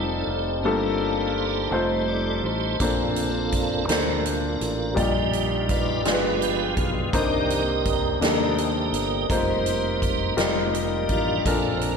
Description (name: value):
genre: slow gospel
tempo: 56 BPM (dotted quarters)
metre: 6/8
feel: straight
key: Bb major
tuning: A4 = 440 Hz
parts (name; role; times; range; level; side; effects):
- clear concert grand piano; accompaniment; 0.0-12.0 s; G2 to D5; -25 LUFS; left 4 dB; slapback echo
- tonewheel organ; sustained chords; 0.0-12.0 s; Eb3 to G5; -26 LUFS; right 4 dB; chorus vibrato, slow rotary speaker
- fingered electric bass; bass; 0.0-12.0 s; F1 to Eb2; -31 LUFS; right 1 dB; none
- swinging big-band drum kit; drums; 2.8-12.0 s; hi-hat, kick drum, snare drum; -27 LUFS; right 1 dB; none
room: moderate concert hall reverb, RT60 2.2 s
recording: big arena sound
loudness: -21 LUFS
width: side -5 dB against mid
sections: 0.0-12.0 A section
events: tonewheel organ solo 0.0-12.0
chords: 0.0 F9; 0.6 Gm9; 1.7 F7; 2.8 Bbmaj9; 5.0 Ebmaj9/Bb; 6.1 G7b9; 7.1 Cm9; 9.3 F7sus4; 10.4 F9sus4; 11.5 Bbmaj7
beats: | 0.65 1.73 | 2.81 3.89 | 4.97 6.06 | 7.14 8.22 | 9.30 10.38 | 11.46